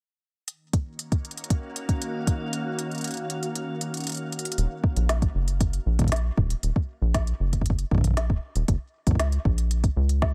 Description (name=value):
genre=IDM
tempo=117 BPM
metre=4/4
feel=straight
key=Eb minor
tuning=A4 = 440 Hz
part: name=glassy FM pad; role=sustained chords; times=0.9-4.6 s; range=Eb3 to F5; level=-35 LUFS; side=equal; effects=ensemble chorus, built-in reverb
part: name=organic electronic drum kit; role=drums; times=0.5-10.3 s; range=hi-hat, snare drum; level=-34 LUFS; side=equal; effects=none
part: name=electronic kick drum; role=drums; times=0.7-10.3 s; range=none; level=-26 LUFS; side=equal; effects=none
part: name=rubbery square bass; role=bass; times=4.6-10.3 s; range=Eb1 to Db2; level=-26 LUFS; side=equal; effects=none
room=little or no reverb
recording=none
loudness=-26 LUFS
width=mono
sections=0.5-4.6 A section; 4.6-10.3 B section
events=kick drops out 2.5-4.6; drum fill 4.3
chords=0.5 Ebm7; 4.6 Ebm; 8.7 Gb (rootless)